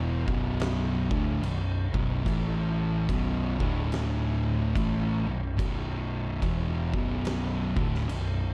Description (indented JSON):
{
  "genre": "stoner and doom metal",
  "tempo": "72 BPM",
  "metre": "4/4",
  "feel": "swing 62% on 8ths",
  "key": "B minor",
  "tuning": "A4 = 441 Hz",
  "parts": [
    { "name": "thick fuzz guitar", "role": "riff", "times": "0.0-8.5 s", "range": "B1 to A3", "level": "-34 LUFS", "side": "equal", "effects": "distortion" },
    { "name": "thick fuzz guitar", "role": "riff", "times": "0.0-8.5 s", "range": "B1 to A3", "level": "-34 LUFS", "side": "equal", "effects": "distortion" },
    { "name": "overdriven picked electric bass", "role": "bass", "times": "0.0-8.5 s", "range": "B0 to A1", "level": "-34 LUFS", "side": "equal", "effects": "none" },
    { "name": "oversized low-tuned drum kit", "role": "drums", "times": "0.3-8.3 s", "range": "crash cymbal, kick drum, snare drum", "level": "-36 LUFS", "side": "equal", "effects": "none" }
  ],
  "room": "light reverb",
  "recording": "dark, warm production",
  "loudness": "-28 LUFS",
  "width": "mono",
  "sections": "0.0-8.5 A section",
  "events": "none",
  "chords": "0.0 Bm; 2.3 A5; 3.1 B5; 3.5 D5; 4.8 Bm",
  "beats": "0.59 1.42 | 2.25 3.09 3.92 4.75 | 5.58 6.42 7.25 8.08"
}